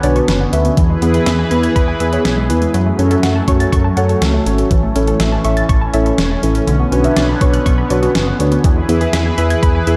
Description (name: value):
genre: synth-pop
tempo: 122 BPM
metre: 4/4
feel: straight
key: unclear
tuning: A4 = 440 Hz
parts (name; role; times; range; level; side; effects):
- muted felt-like synth keys; accompaniment; 0.0-10.0 s; B3 to E5; -20 LUFS; equal; chorus
- chorused pulse-width pad; sustained chords; 0.0-10.0 s; D3 to B4; -22 LUFS; equal; none
- analog pluck; arpeggios; 0.0-10.0 s; D3 to A6; -24 LUFS; equal; chorus, tape echo
- smooth synth bass; bass; 0.0-10.0 s; E1 to F#2; -19 LUFS; equal; none
- clean 12-bit digital drum machine; drums; 0.0-10.0 s; hi-hat, kick drum, snare drum; -20 LUFS; equal; overdrive
room: moderate plate reverb, RT60 2.3 s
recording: dreamy mix soaked in reverb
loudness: -14 LUFS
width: mono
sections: 0.0-10.0 A section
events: none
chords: 0.0 Bmadd9; 0.8 E; 2.7 F#m; 4.7 A; 6.7 Bmadd9; 8.6 E